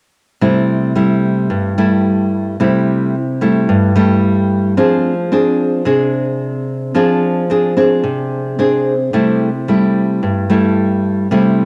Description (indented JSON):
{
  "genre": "bossa nova",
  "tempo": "110 BPM",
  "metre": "4/4",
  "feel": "straight",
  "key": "C major",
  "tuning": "A4 = 440 Hz",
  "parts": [
    { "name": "nylon-string guitar", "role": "accompaniment", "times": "0.4-11.7 s", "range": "G2 to Ab4", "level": "-15 LUFS", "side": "equal", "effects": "cassette tape" }
  ],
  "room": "moderate lush hall reverb, RT60 3.0 s",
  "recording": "home recording on cassette",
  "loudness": "-15 LUFS",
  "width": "mono",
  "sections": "0.4-11.7 A section",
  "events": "none",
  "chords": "0.4 C6; 4.8 Fm6; 9.1 C6"
}